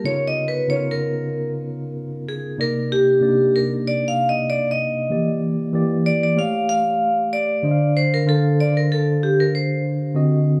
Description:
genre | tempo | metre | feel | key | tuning
soul | 95 BPM | 4/4 | swing 54% on 16ths | unclear | A4 = 440 Hz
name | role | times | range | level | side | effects
vibraphone with hard mallets | melody | 0.0-9.8 s | G4 to F5 | -22 LUFS | equal | none
mellow tine electric piano | accompaniment | 0.0-10.6 s | C3 to F5 | -23 LUFS | equal | none
room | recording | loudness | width
light reverb, small room ambience | studio reverb | -20 LUFS | mono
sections
0.0-10.6 A section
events
vibraphone solo 0.0-10.6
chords
0.1 C#13; 2.6 Cm9; 5.1 Em7b5; 6.4 A7b13; 7.6 Dm7

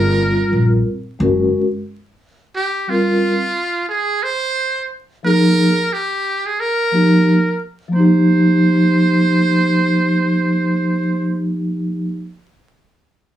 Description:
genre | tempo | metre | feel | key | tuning
hip hop | 89 BPM | 4/4 | swing 58% on 16ths | unclear | A4 = 440 Hz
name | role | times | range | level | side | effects
trumpet with metal mute | melody | 0.0-11.4 s | F4 to C5 | -19 LUFS | right 2 dB | slapback echo
vibraphone with soft mallets | accompaniment | 0.0-12.1 s | F3 to Bb4 | -14 LUFS | equal | none
upright bass | bass | 0.0-1.5 s | Gb1 to Bb1 | -18 LUFS | equal | none
room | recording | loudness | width
wet small room reverb, RT60 0.5 s | vinyl crackle, small room ambience | -14 LUFS | side -12 dB against mid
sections
0.0-7.9 A section; 7.9-10.6 B section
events
none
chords
0.0 Gmadd11; 1.2 Gb; 2.5 Gm7; 5.2 Bb5; 6.6 F9sus4

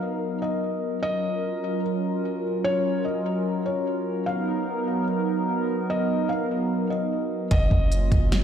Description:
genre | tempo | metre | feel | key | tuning
hip hop, atmospheric cloud-rap | 148 BPM | 4/4 | half-time | F# major | A4 = 440 Hz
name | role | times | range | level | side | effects
felt-muted upright piano | melody | 0.0-8.3 s | C#5 to E#5 | -29 LUFS | left 3 dB | low-pass filter, ping-pong delay
hollow soft pad | sustained chords | 0.0-8.4 s | F#3 to A#4 | -25 LUFS | right 1 dB | chorus, sidechain pumping
soft 808-style bass | bass | 7.5-8.4 s | F#1 | -22 LUFS | equal | none
smooth R&B drum kit | drums | 7.5-8.4 s | hi-hat, kick drum, snare drum | -22 LUFS | equal | none
room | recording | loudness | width
light reverb, digital ambience | played on a big sound system in a bare room, stone room reverb | -23 LUFS | side -9 dB against mid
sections
0.0-7.5 A section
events
none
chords
0.0 Bmaj7; 1.0 F#maj7; 4.3 Bmaj7; 7.5 F#maj7

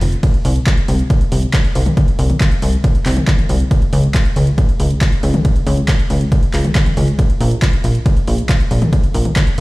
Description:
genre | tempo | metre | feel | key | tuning
uplifting trance | 138 BPM | 4/4 | straight | unclear | A4 = 442 Hz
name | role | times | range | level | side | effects
plucky analog bass | bass | 0.0-9.6 s | F1 to Db2 | -14 LUFS | equal | sidechain pumping
punchy analog drum machine | drums | 0.0-9.6 s | handclaps, hi-hat, ride cymbal, toms | -22 LUFS | left 1 dB | none
electronic kick drum | drums | 0.2-9.4 s | none | -15 LUFS | equal | overdrive
room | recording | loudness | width
little or no reverb | played on a big sound system in a bare room, large studio reverb | -12 LUFS | side -21 dB against mid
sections
0.0-9.6 A section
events
none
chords
none

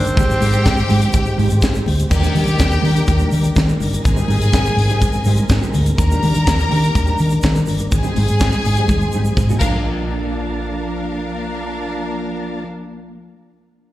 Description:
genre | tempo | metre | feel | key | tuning
disco | 124 BPM | 4/4 | straight | Bb major | A4 = 440 Hz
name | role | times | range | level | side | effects
growling tenor saxophone | melody | 0.0-1.4 s | C4 | -22 LUFS | right 1 dB | slapback echo
mellow electric guitar | accompaniment | 0.0-13.2 s | Eb3 to A4 | -26 LUFS | right 3 dB | ensemble chorus
tonewheel organ | sustained chords | 0.0-12.6 s | Eb3 to A5 | -25 LUFS | equal | chorus vibrato, slow rotary speaker
hollow-body short-scale fingered electric bass | bass | 0.0-12.6 s | G1 to Eb3 | -18 LUFS | equal | none
tight funk drum kit | drums | 0.0-9.7 s | crash cymbal, hi-hat, kick drum, snare drum, toms | -19 LUFS | equal | none
tube shaker | percussion | 0.1-10.1 s | none | -36 LUFS | right 2 dB | none
clear studio string section | second line | 0.2-12.6 s | D4 to Bb5 | -24 LUFS | left 2 dB | slapback echo
congas | percussion | 0.2-10.1 s | none | -29 LUFS | left 5 dB | none
room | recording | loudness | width
small room ambience | live gig heard through the venue's PA, recital hall reverb | -14 LUFS | side -15 dB against mid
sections
0.0-2.1 A section; 2.1-9.9 B section; 9.9-13.7 C section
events
drum fill 8.9-9.9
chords
0.2 Abmaj7; 2.1 Ebmaj7; 4.0 Abmaj7; 6.0 Ebmaj7; 7.9 Abmaj7; 9.6 Bbmaj7

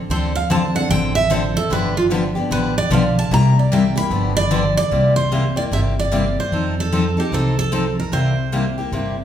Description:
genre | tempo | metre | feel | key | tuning
acoustic string swing (jazz manouche) | 150 BPM | 4/4 | swing 63% on 8ths | unclear | A4 = 440 Hz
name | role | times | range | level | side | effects
picked steel-string acoustic guitar | melody | 0.1-9.2 s | F4 to B5 | -21 LUFS | right 2 dB | none
picked steel-string acoustic guitar | accompaniment | 0.1-9.1 s | C3 to A4 | -20 LUFS | left 2 dB | none
upright bass | bass | 0.1-9.2 s | G1 to F2 | -21 LUFS | equal | none
room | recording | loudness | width
wet large studio reverb, RT60 1.3 s | band playing live in one room | -16 LUFS | side -10 dB against mid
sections
0.0-4.9 A section; 4.9-9.2 B section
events
steel-string acoustic guitar solo 0.0-4.9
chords
0.0 Dm7; 1.7 G7; 3.3 C7; 4.1 G7; 4.9 C7; 6.5 F7; 8.1 C7

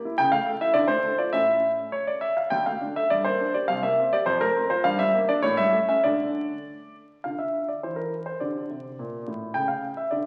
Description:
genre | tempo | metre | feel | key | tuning
classical-period piano sonatina | 103 BPM | 2/4 | rubato | D minor | A4 = 442 Hz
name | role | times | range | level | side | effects
warm concert grand piano | solo | 0.0-10.3 s | C2 to G5 | -25 LUFS | equal | none
room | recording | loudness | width
wet recital hall reverb, RT60 1.4 s | very old 78 rpm record, vinyl crackle | -25 LUFS | mono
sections
0.0-7.2 A section; 7.2-10.3 A section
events
none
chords
0.2 A/C#; 0.8 Dm; 1.4 A; 2.5 Dm; 3.1 Gm; 3.7 C7; 4.3 F; 4.9 Gm; 5.4 A7; 6.0 D5; 7.2 Dm; 8.4 Bbmaj13; 9.6 A/C#

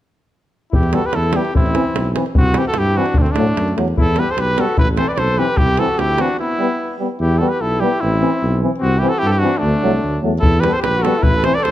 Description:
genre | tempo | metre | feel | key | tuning
balkan folk, Balkan brass band | 148 BPM | 2/4 | straight | E minor | A4 = 439 Hz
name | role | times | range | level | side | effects
warm trumpet | melody | 0.7-11.7 s | C4 to D5 | -19 LUFS | right 1 dB | none
clear flugelhorn | second line | 0.7-11.7 s | A3 to B4 | -25 LUFS | left 5 dB | none
mellow tuba | bass | 0.7-11.7 s | A1 to A2 | -20 LUFS | equal | none
davul | percussion | 0.7-6.3, 10.4-11.7 s | none | -19 LUFS | equal | none
clear euphonium | accompaniment | 0.9-11.5 s | E3 to G3 | -25 LUFS | right 6 dB | none
warm euphonium | accompaniment | 0.9-11.5 s | A3 to C4 | -24 LUFS | left 5 dB | none
room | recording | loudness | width
moderate recital hall reverb, RT60 1.7 s | close, detailed microphones | -14 LUFS | side -13 dB against mid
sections
0.7-7.2 A section; 7.2-11.7 A section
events
break 6.4-7.2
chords
0.7 Em; 1.5 Am; 2.3 C; 3.2 D; 4.0 Em; 4.8 Am; 5.6 C; 6.4 Em; 8.0 Am; 8.8 C; 9.6 D; 10.4 Em

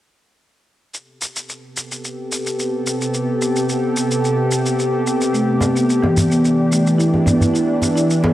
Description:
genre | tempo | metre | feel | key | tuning
organic downtempo | 109 BPM | 4/4 | straight | A minor | A4 = 435 Hz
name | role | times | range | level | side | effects
bowed-like drone | sustained chords | 1.9-8.3 s | C3 to A4 | -18 LUFS | equal | built-in reverb, cassette tape
shaker | drums | 0.9-8.2 s | none | -26 LUFS | equal | cassette tape
marimba with soft mallets | arpeggios | 5.3-8.3 s | E3 to E4 | -17 LUFS | equal | cassette tape, tape echo
djembe | percussion | 5.6-8.3 s | none | -20 LUFS | equal | none
room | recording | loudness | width
moderate lush hall reverb, RT60 1.9 s, small room ambience | home recording on cassette | -16 LUFS | side -14 dB against mid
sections
0.9-8.3 A section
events
filter sweep on synth drone 0.9-8.3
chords
0.9 Am9; 5.3 Em7

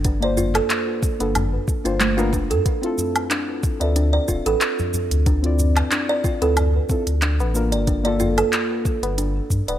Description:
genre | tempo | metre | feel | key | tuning
organic downtempo | 92 BPM | 4/4 | swing 54% on 16ths | D minor | A4 = 440 Hz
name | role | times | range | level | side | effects
kalimba | arpeggios | 0.0-9.8 s | A3 to D5 | -24 LUFS | right 3 dB | tape echo
warm sub bass | bass | 0.0-9.8 s | D1 to G2 | -21 LUFS | equal | sidechain pumping
electronic kick drum | drums | 0.0-9.6 s | none | -22 LUFS | equal | none
organic electronic drum kit | drums | 0.0-9.8 s | handclaps, hi-hat, shaker, woodblock | -25 LUFS | equal | none
tabla | percussion | 0.1-9.8 s | none | -31 LUFS | left 3 dB | none
muted felt-like synth keys | accompaniment | 0.2-9.0 s | Bb3 to E5 | -26 LUFS | left 3 dB | chorus, sidechain pumping, tape echo
room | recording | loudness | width
light reverb, digital ambience | none | -18 LUFS | side -12 dB against mid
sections
0.0-9.8 A section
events
none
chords
0.0 Gm7; 2.7 Dm7

